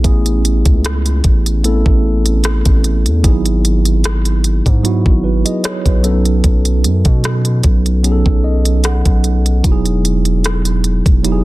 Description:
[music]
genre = contemporary R&B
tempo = 75 BPM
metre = 4/4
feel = swing 54% on 16ths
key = E major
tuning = A4 = 439 Hz
[part]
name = mellow tine electric piano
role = accompaniment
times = 0.0-11.4 s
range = F#3 to F#5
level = -18 LUFS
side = right 2 dB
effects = slow stereo tremolo
[part]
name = long sustained 808-style bass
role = bass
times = 0.0-11.4 s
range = E1 to B2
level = -14 LUFS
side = equal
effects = none
[part]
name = smooth R&B drum kit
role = drums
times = 0.0-11.4 s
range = hi-hat, kick drum, rim click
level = -14 LUFS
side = equal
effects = none
[sound]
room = digital ambience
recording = dense, heavily limited modern master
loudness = -11 LUFS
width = side -18 dB against mid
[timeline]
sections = 0.0-11.4 A section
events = tine electric piano fill 8.0-9.6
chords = 0.0 Amaj7; 3.2 Emaj9/G#; 6.0 B7; 9.6 Emaj9

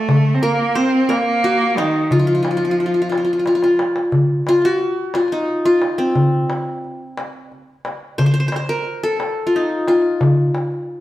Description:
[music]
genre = Arabic maqam ensemble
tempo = 59 BPM (dotted quarters)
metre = 6/8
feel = straight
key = F maqam hijaz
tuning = A4 = 441 Hz
[part]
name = qanun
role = melody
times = 0.0-11.0 s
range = C4 to C5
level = -18 LUFS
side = left 1 dB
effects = slapback echo
[part]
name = clear cello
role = second line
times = 0.0-3.8 s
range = Eb3 to C4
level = -19 LUFS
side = right 2 dB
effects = none
[part]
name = darbuka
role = percussion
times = 0.1-10.8 s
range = none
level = -19 LUFS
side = left 1 dB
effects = none
[sound]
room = wet stone room reverb, RT60 1.2 s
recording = band playing live in one room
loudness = -15 LUFS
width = side -15 dB against mid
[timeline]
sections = 0.0-4.1 A section; 4.1-11.0 B section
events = drum fill 3.5-4.1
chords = none

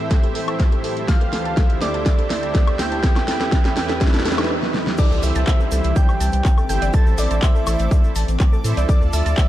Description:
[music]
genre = progressive house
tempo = 123 BPM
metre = 4/4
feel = straight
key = A minor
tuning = A4 = 440 Hz
[part]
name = lush unison pad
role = sustained chords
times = 0.0-9.5 s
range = D2 to E5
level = -29 LUFS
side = left 1 dB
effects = chorus, sidechain pumping
[part]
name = soft supersaw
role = stabs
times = 0.0-9.5 s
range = E3 to A5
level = -28 LUFS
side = right 3 dB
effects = cassette tape, sidechain pumping, digital delay
[part]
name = riser, swell and downlifter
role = sound effects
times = 0.5-8.9 s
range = none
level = -33 LUFS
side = right 2 dB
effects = none
[part]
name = soft round pluck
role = arpeggios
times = 0.1-9.4 s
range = A4 to A6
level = -30 LUFS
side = equal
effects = analog chorus, sidechain pumping, digital delay
[part]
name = electronic kick drum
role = drums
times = 0.1-9.5 s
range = none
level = -16 LUFS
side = equal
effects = overdrive
[part]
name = pop drum kit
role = drums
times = 0.1-9.5 s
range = crash cymbal, handclaps, hi-hat, snare drum, woodblock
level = -25 LUFS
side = equal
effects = sidechain pumping on hats, sidechain pumping on perc, sidechain pumping on cymbals
[part]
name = soft octave-layered synth lead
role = melody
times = 1.1-9.5 s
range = D5 to A5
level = -28 LUFS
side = equal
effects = chorus, sidechain pumping, dub echo
[part]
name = glassy wavetable pluck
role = second line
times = 1.1-9.5 s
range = D6 to A6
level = -33 LUFS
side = right 1 dB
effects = chorus, sidechain pumping, digital delay
[part]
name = tube shaker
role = percussion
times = 5.0-9.5 s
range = none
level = -38 LUFS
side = right 2 dB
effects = none
[part]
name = backwards swelling texture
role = texture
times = 6.3-9.5 s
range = D5 to D6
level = -39 LUFS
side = left 1 dB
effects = none
[part]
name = saturated sub bass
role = bass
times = 5.1-9.3 s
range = G1 to A2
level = -19 LUFS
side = equal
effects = sidechain pumping
[sound]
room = light reverb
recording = dark, warm production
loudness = -16 LUFS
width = side -14 dB against mid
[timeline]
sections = 0.0-5.0 A section; 5.0-9.5 B section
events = build-up 0.0-5.0; drum fill 0.0-4.5, 4.6-5.0; swell 4.0-5.0; break 4.5-5.0; drop 5.0-9.5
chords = 0.0 Am; 1.1 Dm; 3.0 Em; 5.0 C; 6.9 Am; 8.9 Dm

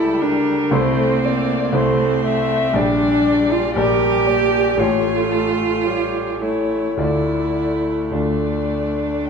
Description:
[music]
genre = classical, slow romantic movement for piano quartet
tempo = 52-60 BPM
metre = 4/4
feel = rubato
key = unclear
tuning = A4 = 440 Hz
[part]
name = muted violin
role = melody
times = 0.0-9.3 s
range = A4 to G5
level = -24 LUFS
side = left 6 dB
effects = none
[part]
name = muted cello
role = second line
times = 0.0-9.3 s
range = C4 to G4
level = -20 LUFS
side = right 3 dB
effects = none
[part]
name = clear concert grand piano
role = accompaniment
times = 0.0-9.3 s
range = A1 to D5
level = -21 LUFS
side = left 1 dB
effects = none
[part]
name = muted viola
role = accompaniment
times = 0.0-9.3 s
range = G3 to Bb3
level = -25 LUFS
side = right 3 dB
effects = none
[sound]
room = moderate recital hall reverb, RT60 1.3 s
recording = minimal, uncompressed stereo recording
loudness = -16 LUFS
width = side -6 dB against mid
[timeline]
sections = 0.0-9.3 A section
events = none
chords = 0.0 A/C#; 0.7 Am/C; 2.8 Gm/Bb; 4.8 A7; 7.0 Dm

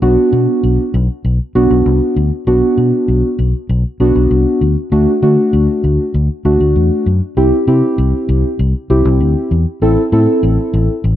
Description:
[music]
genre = synth-pop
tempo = 98 BPM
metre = 4/4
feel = straight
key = unclear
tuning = A4 = 440 Hz
[part]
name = muted felt-like synth keys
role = accompaniment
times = 0.0-10.9 s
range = A3 to A4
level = -13 LUFS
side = equal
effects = chorus
[part]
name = fingered electric bass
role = bass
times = 0.0-11.2 s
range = A1 to D3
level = -13 LUFS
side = left 1 dB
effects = none
[sound]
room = light reverb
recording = none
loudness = -11 LUFS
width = side -12 dB against mid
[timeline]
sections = 0.0-4.9 A section; 4.9-11.2 B section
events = none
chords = 0.0 Bm; 4.9 D; 7.4 C; 9.8 Am

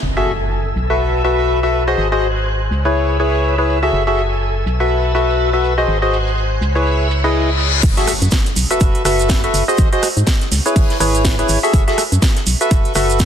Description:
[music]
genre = piano house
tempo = 123 BPM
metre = 4/4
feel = swing 58% on 16ths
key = F# dorian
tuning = A4 = 440 Hz
[part]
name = string machine, violins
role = sustained chords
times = 0.0-7.8 s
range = A4 to F#6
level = -25 LUFS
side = equal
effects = ensemble chorus, sidechain pumping
[part]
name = organ-like FM bass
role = bass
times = 0.0-13.2 s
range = F#1 to G#2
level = -18 LUFS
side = equal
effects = sidechain pumping
[part]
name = house drum kit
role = drums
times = 0.0-13.2 s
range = crash cymbal, hi-hat, rim click, shaker, snare drum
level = -22 LUFS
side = right 2 dB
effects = low-pass filter on perc, low-pass filter on hats, low-pass filter on snare, low-pass filter on cymbals, low-pass filter on room
[part]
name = impact and reverse cymbal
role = sound effects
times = 0.0-2.0, 7.2-9.8 s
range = none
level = -24 LUFS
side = left 2 dB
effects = none
[part]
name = percussive organ stab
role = riff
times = 0.2-13.2 s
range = E4 to E5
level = -17 LUFS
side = left 1 dB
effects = wide subtle chorus, cassette tape, sidechain pumping, dub echo
[part]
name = electronic kick drum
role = drums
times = 7.8-13.2 s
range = none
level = -15 LUFS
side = equal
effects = none
[part]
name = modern studio drum kit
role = drums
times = 7.8-13.2 s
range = hi-hat, shaker, snare drum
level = -30 LUFS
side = left 1 dB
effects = none
[sound]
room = light reverb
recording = dense, heavily limited modern master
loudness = -13 LUFS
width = side -8 dB against mid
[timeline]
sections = 0.0-7.8 A section; 7.8-13.2 B section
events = impact 0.0-2.0, 7.8-9.8; filter sweep on string machine 0.0-7.8; reverse cymbal 7.2-7.8; drop 7.8-13.2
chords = 0.0 F#m9; 0.8 B7sus4; 2.0 G#7; 2.7 C#m7; 3.9 F#m9; 4.7 B7sus4; 5.9 G#7; 6.6 C#m7; 7.8 F#m9; 8.6 B7sus4; 9.8 G#7; 10.5 C#m7; 11.7 F#m9; 12.5 B7sus4

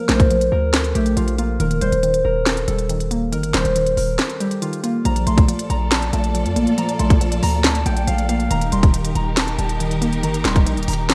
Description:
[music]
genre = hip hop, trap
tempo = 139 BPM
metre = 4/4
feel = half-time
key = Bb major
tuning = A4 = 441 Hz
[part]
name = concert harp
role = melody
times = 0.0-11.1 s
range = F4 to C6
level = -26 LUFS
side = equal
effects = none
[part]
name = warbly dusty pluck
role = accompaniment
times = 0.0-11.1 s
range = Eb3 to Bb3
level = -26 LUFS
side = equal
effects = chorus, phaser
[part]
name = hard-hitting 808-style bass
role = bass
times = 0.1-11.1 s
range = D1 to F2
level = -24 LUFS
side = equal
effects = none
[part]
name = trap drum kit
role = drums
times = 0.1-11.1 s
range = handclaps, hi-hat, kick drum, snare drum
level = -21 LUFS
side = equal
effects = none
[part]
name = dark studio string section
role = sustained chords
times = 5.0-11.1 s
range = Bb2 to D5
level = -30 LUFS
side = equal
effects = none
[sound]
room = light reverb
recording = none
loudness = -19 LUFS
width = mono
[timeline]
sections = 0.0-5.1 A section; 5.1-11.1 B section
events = break 4.2-5.1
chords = 0.0 Bbmaj7; 1.6 Eb; 5.1 Bbmaj7; 8.5 Eb

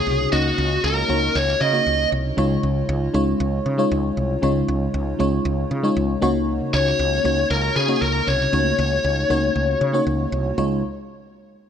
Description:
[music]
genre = 1980s-style pop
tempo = 117 BPM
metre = 4/4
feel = straight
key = Db major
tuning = A4 = 435 Hz
[part]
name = biting lead guitar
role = melody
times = 0.0-2.1, 6.7-10.0 s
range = Gb4 to Eb5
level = -21 LUFS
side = left 2 dB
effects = overdrive
[part]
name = FM electric piano with soft pad layer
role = accompaniment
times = 0.0-10.8 s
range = Db2 to Eb5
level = -22 LUFS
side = equal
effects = chorus
[part]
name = woody fretless electric bass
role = bass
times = 0.1-10.8 s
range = C2 to Db3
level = -23 LUFS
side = right 1 dB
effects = none
[sound]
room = moderate plate reverb, RT60 2.3 s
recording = none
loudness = -18 LUFS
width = side -8 dB against mid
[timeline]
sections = 0.0-10.6 A section; 10.6-11.7 B section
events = none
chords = 0.0 Gb6; 2.4 Dbadd9; 6.2 Gb6; 10.6 Dbadd9

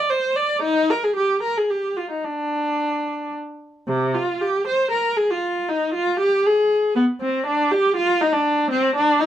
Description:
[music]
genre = classical, baroque-style suite movement for unaccompanied viola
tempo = 107-122 BPM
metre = 3/4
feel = rubato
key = unclear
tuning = A4 = 443 Hz
[part]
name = rich viola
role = solo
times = 0.0-9.3 s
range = C3 to D5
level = -18 LUFS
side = equal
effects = none
[sound]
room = light reverb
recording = dark, warm production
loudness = -18 LUFS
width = side -11 dB against mid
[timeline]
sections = 0.0-3.9 A section; 3.9-9.3 B section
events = none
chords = none

